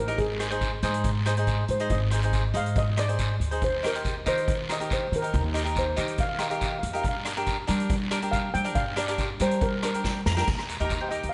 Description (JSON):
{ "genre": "calypso", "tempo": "140 BPM", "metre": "4/4", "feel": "straight", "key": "Eb major", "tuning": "A4 = 441 Hz", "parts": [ { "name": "steel pan", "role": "melody", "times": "0.0-11.3 s", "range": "Ab4 to Bb5", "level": "-33 LUFS", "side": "equal", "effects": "none" }, { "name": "upright bass", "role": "bass", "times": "0.0-11.3 s", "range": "Ab1 to G3", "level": "-31 LUFS", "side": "equal", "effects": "none" }, { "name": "cavaquinho", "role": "accompaniment", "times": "0.1-11.3 s", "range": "D4 to C5", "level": "-33 LUFS", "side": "equal", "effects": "none" }, { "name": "street-band drum kit", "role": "drums", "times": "0.1-11.3 s", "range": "crash cymbal, hi-hat, kick drum, rim click, snare drum", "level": "-34 LUFS", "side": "equal", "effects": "none" }, { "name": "guiro", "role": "percussion", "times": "0.2-11.0 s", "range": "none", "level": "-39 LUFS", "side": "equal", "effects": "none" } ], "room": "light reverb", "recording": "nothing above 10.8 kHz", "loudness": "-27 LUFS", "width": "mono", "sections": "0.0-10.5 A section", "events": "steel pan solo 0.0-10.5; drum fill 10.0-10.5", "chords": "0.2 Ab; 3.6 Eb6; 7.0 Gm; 10.5 Eb" }